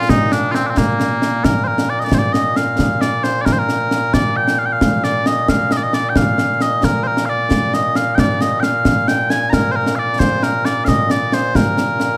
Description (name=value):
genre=scottish traditional, Scottish pipe music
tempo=89 BPM (dotted quarters)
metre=6/8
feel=straight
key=Bb major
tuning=A4 = 439 Hz
part: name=mellow small bagpipes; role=melody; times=0.0-12.2 s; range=Bb2 to Bb5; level=-19 LUFS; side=equal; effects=none
part: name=concert snare drum and concert bass drum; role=drums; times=0.1-12.1 s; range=none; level=-20 LUFS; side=equal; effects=none
room=moderate recital hall reverb, RT60 1.6 s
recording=none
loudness=-16 LUFS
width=mono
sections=0.0-2.1 A section; 2.1-12.2 B section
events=none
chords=none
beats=0.09 | 0.77 1.44 | 2.12 2.79 | 3.46 4.14 | 4.81 5.49 | 6.16 6.83 | 7.51 8.18 | 8.86 9.53 | 10.21 10.88 | 11.55